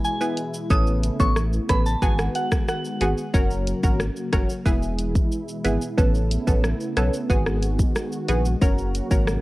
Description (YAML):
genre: dancehall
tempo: 91 BPM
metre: 4/4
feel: straight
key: unclear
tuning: A4 = 440 Hz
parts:
  - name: soft synth bell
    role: melody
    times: 0.0-3.1 s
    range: F#5 to D#6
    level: -28 LUFS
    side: right 1 dB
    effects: chorus, phaser
  - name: punchy chord stab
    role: accompaniment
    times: 0.0-9.3 s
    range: B3 to A#4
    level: -27 LUFS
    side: right 1 dB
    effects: chorus, sidechain pumping
  - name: warm analog pad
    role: sustained chords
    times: 0.0-9.4 s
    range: B2 to F#4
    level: -30 LUFS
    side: equal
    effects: chorus, sidechain pumping
  - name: pop drum kit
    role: drums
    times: 0.0-9.4 s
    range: hi-hat, kick drum, rim click, shaker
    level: -22 LUFS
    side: equal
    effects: none
  - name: saturated sub bass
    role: bass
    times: 0.7-9.4 s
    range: E1 to B1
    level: -24 LUFS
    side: equal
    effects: none
room: little or no reverb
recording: worn, warbling old tape, cassette tape, warbly pitch drift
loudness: -20 LUFS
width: side -19 dB against mid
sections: 0.0-3.3 A section; 3.3-9.4 B section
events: none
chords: 0.0 E; 0.7 Aadd9; 2.0 G#m7; 3.3 F#; 4.7 E; 6.0 Aadd9; 7.3 G#m7; 8.6 F#